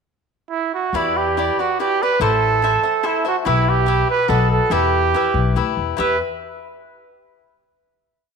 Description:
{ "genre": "mexican folk, mariachi", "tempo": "143 BPM", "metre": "3/4", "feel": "straight", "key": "E minor", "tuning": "A4 = 440 Hz", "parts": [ { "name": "clear trumpet", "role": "melody", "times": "0.5-6.2 s", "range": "E4 to B4", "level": "-19 LUFS", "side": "right 7 dB", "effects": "slapback echo" }, { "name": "cavaquinho", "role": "accompaniment", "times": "0.9-6.7 s", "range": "E4 to E5", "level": "-22 LUFS", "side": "left 12 dB", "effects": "none" }, { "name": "upright bass", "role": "bass", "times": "0.9-6.2 s", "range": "A1 to E2", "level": "-21 LUFS", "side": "left 3 dB", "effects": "none" } ], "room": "moderate echo chamber reverb, RT60 2.0 s", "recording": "1960s-style stereo with parts hard left and right", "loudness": "-16 LUFS", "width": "side -5 dB against mid", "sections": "0.0-0.9 pickup bar; 0.9-6.0 A section; 6.0-7.2 final chord", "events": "none", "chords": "0.0 N.C.; 0.9 Em7; 2.2 Am; 3.5 Em/B; 4.3 B7; 4.7 Em", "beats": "0.09 0.51 | 0.93 1.36 1.78 | 2.21 2.62 3.04 | 3.46 3.88 4.30 | 4.72 5.14 5.57 | 5.99 6.41" }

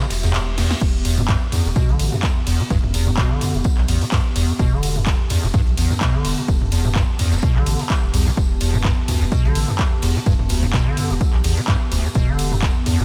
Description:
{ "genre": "acid house", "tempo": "127 BPM", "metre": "4/4", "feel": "swing 55% on 16ths", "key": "E minor", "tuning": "A4 = 440 Hz", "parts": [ { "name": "acid bass, square", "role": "riff", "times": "0.0-13.0 s", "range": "D2 to E3", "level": "-24 LUFS", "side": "equal", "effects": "tube saturation, ensemble chorus, cassette tape" }, { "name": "punchy analog drum machine", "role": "drums", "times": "0.0-13.0 s", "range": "crash cymbal, handclaps, hi-hat, ride cymbal, snare drum, toms", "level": "-27 LUFS", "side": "equal", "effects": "overdrive" }, { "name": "reverse cymbal", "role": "sound effects", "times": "0.2-0.8 s", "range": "none", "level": "-38 LUFS", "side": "equal", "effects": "none" }, { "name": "deep dark ambient pad", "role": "texture", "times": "0.0-13.0 s", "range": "B3 to D6", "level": "-33 LUFS", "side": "equal", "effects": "chorus, built-in reverb, sidechain pumping" }, { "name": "saturated sub bass", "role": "bass", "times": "0.1-13.0 s", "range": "E1 to B1", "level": "-25 LUFS", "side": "equal", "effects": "sidechain pumping" }, { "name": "warm soul drum kit", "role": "drums", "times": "0.1-13.0 s", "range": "hi-hat, snare drum, tambourine", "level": "-40 LUFS", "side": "equal", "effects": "none" }, { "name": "tambourine", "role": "percussion", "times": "0.1-13.0 s", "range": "none", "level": "-37 LUFS", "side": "equal", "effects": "none" }, { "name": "electronic kick drum", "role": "drums", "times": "0.8-12.7 s", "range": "none", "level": "-22 LUFS", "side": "equal", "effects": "overdrive" } ], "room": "light reverb, small room reverb", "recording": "none", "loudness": "-19 LUFS", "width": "mono", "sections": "0.0-13.0 A section", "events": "reverse cymbal 0.2-0.8; kick drops out 0.3-0.8; drum fill 0.6", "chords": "0.0 Em", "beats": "0.34 | 0.81 1.29 1.76 2.23 | 2.70 3.18 3.65 4.12 | 4.59 5.07 5.54 6.01 | 6.48 6.96 7.43 7.90 | 8.37 8.85 9.32 9.79 | 10.26 10.73 11.21 11.68 | 12.15 12.62" }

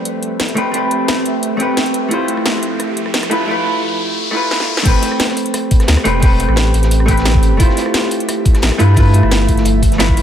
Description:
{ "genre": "liquid drum and bass", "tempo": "175 BPM", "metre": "4/4", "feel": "straight", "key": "A minor", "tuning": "A4 = 440 Hz", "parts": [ { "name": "vintage hollow-body jazz guitar", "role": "accompaniment", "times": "0.0-10.2 s", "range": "A3 to C5", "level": "-17 LUFS", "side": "right 1 dB", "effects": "dub echo" }, { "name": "ethereal airy pad", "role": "sustained chords", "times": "0.0-10.2 s", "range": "F3 to E5", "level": "-23 LUFS", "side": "left 1 dB", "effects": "ensemble chorus, built-in reverb, sidechain pumping" }, { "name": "riser", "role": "sound effects", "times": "2.0-4.9 s", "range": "none", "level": "-26 LUFS", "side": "left 2 dB", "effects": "none" }, { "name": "drum and bass drum kit", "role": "drums", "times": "0.1-10.2 s", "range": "crash cymbal, hi-hat, rim click, snare drum", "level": "-20 LUFS", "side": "equal", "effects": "none" }, { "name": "saturated sub bass", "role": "bass", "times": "4.9-10.2 s", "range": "E1 to G2", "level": "-13 LUFS", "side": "equal", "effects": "none" }, { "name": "crunchy breakbeat drum kit", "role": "drums", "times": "4.9-10.2 s", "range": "hi-hat, snare drum", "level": "-27 LUFS", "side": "equal", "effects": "high-pass filter on hats, high-pass filter on snare, high-pass filter on room" }, { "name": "electronic kick drum", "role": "drums", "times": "4.9-10.2 s", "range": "none", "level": "-12 LUFS", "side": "equal", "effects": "none" } ], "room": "light reverb", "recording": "high-pass filter", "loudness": "-12 LUFS", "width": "side -10 dB against mid", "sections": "0.0-4.9 A section; 4.9-10.2 B section", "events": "build-up 0.0-4.9; filter sweep 0.0-4.9; riser 2.0-4.9; drum fill 4.5-4.9; drop 4.9-10.2", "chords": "0.0 Am9; 2.1 Fmaj7; 3.3 G13; 4.9 Am9; 7.6 Fmaj7; 8.8 G13", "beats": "0.06 0.40 | 0.74 1.08 1.43 1.77 | 2.11 2.46 2.80 3.14 | 3.48 3.83 4.17 4.51 | 4.86 5.20 5.54 5.88 | 6.23 6.57 6.91 7.25 | 7.60 7.94 8.28 8.63 | 8.97 9.31 9.65 10.00" }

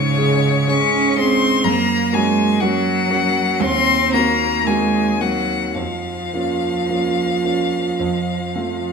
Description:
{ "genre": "classical, slow romantic movement for piano trio", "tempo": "53-63 BPM", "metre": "4/4", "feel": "rubato", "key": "Bb minor", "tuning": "A4 = 444 Hz", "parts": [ { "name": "clear violin", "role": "melody", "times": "0.0-8.9 s", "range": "Db5 to Db6", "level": "-20 LUFS", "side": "left 8 dB", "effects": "none" }, { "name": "rich cello", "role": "second line", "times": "0.0-8.9 s", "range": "Db3 to Db4", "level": "-20 LUFS", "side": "right 4 dB", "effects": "none" }, { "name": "warm concert grand piano", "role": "accompaniment", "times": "0.0-8.9 s", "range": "Eb2 to Ab4", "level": "-21 LUFS", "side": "right 1 dB", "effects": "none" } ], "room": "wet stone room reverb, RT60 1.3 s", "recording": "minimal, uncompressed stereo recording", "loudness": "-16 LUFS", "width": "side -5 dB against mid", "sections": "0.0-8.9 A section", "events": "none", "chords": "0.0 Db5; 1.7 Gb; 3.6 Cm7b5/Eb; 5.8 Bbm/F; 8.0 F", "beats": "0.69 | 1.66 2.62 3.60 4.66 | 5.75 6.88 7.98" }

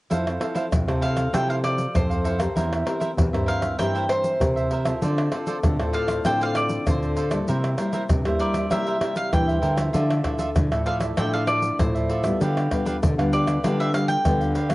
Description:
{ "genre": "samba and choro", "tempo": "98 BPM", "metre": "4/4", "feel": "straight", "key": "F major", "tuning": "A4 = 441 Hz", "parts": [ { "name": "cavaquinho", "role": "accompaniment", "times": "0.1-14.7 s", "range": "D4 to F5", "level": "-29 LUFS", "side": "right 3 dB", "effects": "cassette tape" }, { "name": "nylon-string guitar", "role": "accompaniment", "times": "0.1-14.7 s", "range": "G2 to Bb4", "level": "-28 LUFS", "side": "left 2 dB", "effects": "cassette tape" }, { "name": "nylon-string guitar", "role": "bass", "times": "0.1-14.7 s", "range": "E2 to G3", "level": "-26 LUFS", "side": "equal", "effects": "none" }, { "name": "tube shaker, surdo, pandeiro and tamborim", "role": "percussion", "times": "0.1-14.7 s", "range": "none", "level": "-25 LUFS", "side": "equal", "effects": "none" }, { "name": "bowl-back mandolin", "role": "melody", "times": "1.0-14.5 s", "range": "C5 to G5", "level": "-26 LUFS", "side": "equal", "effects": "cassette tape" } ], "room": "light reverb, small room ambience", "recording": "home recording on cassette, nothing above 10.9 kHz", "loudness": "-20 LUFS", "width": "side -19 dB against mid", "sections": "0.1-14.7 A section", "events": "none", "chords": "0.1 Fmaj7; 2.6 C7/E; 5.0 Dm7; 7.5 C7; 9.9 Dmadd9; 12.4 G7/D", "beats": "| 0.11 0.72 1.33 1.95 | 2.56 3.18 3.79 4.41 | 5.02 5.64 6.25 6.87 | 7.48 8.10 8.71 9.33 | 9.95 10.56 11.18 11.79 | 12.41 13.02 13.64 14.25" }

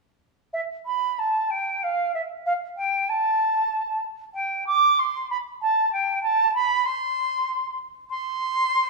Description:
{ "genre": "classical, baroque-style fantasia for unaccompanied flute", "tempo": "96 BPM", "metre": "3/4", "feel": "rubato", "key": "C major", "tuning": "A4 = 440 Hz", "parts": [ { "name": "silver concert flute", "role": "solo", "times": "0.5-8.9 s", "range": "E5 to D6", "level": "-22 LUFS", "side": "right 2 dB", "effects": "none" } ], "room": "moderate recital hall reverb, RT60 1.3 s", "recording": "small room ambience", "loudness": "-22 LUFS", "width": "side -1 dB against mid", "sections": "0.5-8.9 A section", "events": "none", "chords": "none", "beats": "| 0.55 1.19 1.82 | 2.46 3.09 3.73 | 4.35 4.98 5.61 | 6.23 6.86 7.48 | 8.10 8.72" }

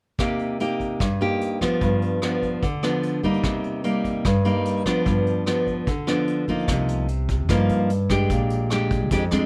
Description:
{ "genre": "bossa nova", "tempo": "148 BPM", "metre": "4/4", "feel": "straight", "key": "C minor", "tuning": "A4 = 440 Hz", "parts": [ { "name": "nylon-string guitar", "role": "accompaniment", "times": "0.2-9.5 s", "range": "F2 to G4", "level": "-24 LUFS", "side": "equal", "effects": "none" }, { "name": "vintage brush drum kit", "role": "drums", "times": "0.2-9.4 s", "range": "hi-hat, kick drum, rim click", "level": "-30 LUFS", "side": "equal", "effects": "none" }, { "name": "upright bass", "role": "bass", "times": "6.7-9.5 s", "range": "Bb1 to G2", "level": "-26 LUFS", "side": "equal", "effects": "none" } ], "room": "little or no reverb", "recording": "close, detailed microphones", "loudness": "-23 LUFS", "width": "mono", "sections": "0.2-6.7 A section; 6.7-9.5 B section", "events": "none", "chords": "0.2 Cm7; 1.8 G7; 3.4 Cm7; 5.1 G7; 6.7 Cm11; 8.3 Bb13", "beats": "| 0.19 0.60 1.00 1.41 | 1.81 2.22 2.62 3.03 | 3.44 3.84 4.25 4.65 | 5.06 5.46 5.87 6.28 | 6.68 7.09 7.49 7.90 | 8.30 8.71 9.11" }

